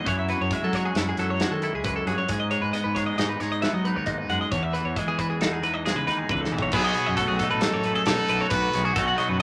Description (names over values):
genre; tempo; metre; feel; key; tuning
math rock and midwest emo; 135 BPM; 5/4; straight; unclear; A4 = 440 Hz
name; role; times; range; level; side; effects
twelve-string electric guitar; accompaniment; 0.0-9.4 s; E2 to F#4; -30 LUFS; equal; none
twelve-string electric guitar; arpeggios; 0.0-9.4 s; F#4 to F#5; -30 LUFS; equal; none
fuzz fingered electric bass; bass; 0.1-9.4 s; A1 to F#3; -32 LUFS; equal; overdrive
loose indie drum kit; drums; 0.1-9.3 s; crash cymbal, hi-hat, kick drum, snare drum, toms; -32 LUFS; equal; none
brilliant trumpet; melody; 6.7-9.4 s; F#4 to B4; -29 LUFS; equal; none
room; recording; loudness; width
moderate club reverb, RT60 0.6 s; none; -25 LUFS; mono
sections
0.0-6.7 A section; 6.7-9.4 B section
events
drum fill 6.3-6.7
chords
0.1 F#m9; 2.3 G#m7; 4.5 Emaj7; 6.7 B7